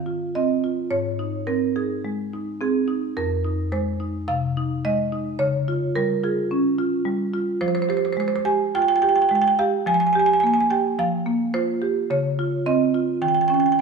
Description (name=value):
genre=classical, contemporary piece for solo marimba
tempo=107 BPM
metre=4/4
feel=rubato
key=unclear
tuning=A4 = 441 Hz
part: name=marimba with medium hard mallets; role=solo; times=0.0-13.8 s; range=F2 to Ab5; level=-20 LUFS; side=right 2 dB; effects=none
room=wet recital hall reverb, RT60 1.6 s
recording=small room ambience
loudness=-20 LUFS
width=side -5 dB against mid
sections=0.0-13.8 A section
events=none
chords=0.0 Ab6 (rootless); 0.9 Dbsus2/Ab; 3.2 Fm7; 5.4 Db; 7.6 Fmadd9; 9.9 Abmaj9/F; 12.1 Dbmaj9; 13.2 Eb7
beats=0.34 | 0.90 1.48 2.04 2.61 | 3.17 3.72 4.28 4.84 | 5.39 5.95 6.51 7.06 | 7.62 8.18 8.74 9.30 | 9.86 10.42 10.98 11.55 | 12.11 12.68 13.24 13.81